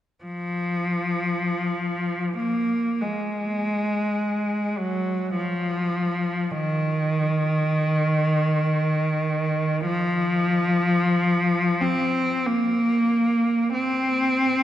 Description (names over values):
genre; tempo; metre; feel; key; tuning
classical, free, expressive piece for unaccompanied cello; free time; none; none; unclear; A4 = 440 Hz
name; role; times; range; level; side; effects
clear cello; solo; 0.2-14.6 s; Eb3 to C4; -21 LUFS; equal; none
room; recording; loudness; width
wet church reverb, RT60 3.8 s; dark, warm production; -21 LUFS; side -12 dB against mid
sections
0.2-14.6 A section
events
none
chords
none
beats
free time